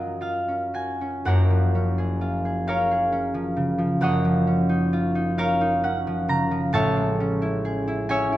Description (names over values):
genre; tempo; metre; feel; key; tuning
classical, solo harp piece; 44 BPM (dotted quarters); 6/8; rubato; F# major; A4 = 440 Hz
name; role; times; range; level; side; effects
concert harp; solo; 0.0-8.4 s; F#1 to A#5; -21 LUFS; equal; none
room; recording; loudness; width
wet recital hall reverb, RT60 1.5 s; none; -21 LUFS; side -14 dB against mid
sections
0.0-1.3 A section; 1.3-8.4 B section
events
none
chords
0.0 F#maj7; 1.3 F#maj9; 4.0 D#m9/F#; 6.8 Amaj7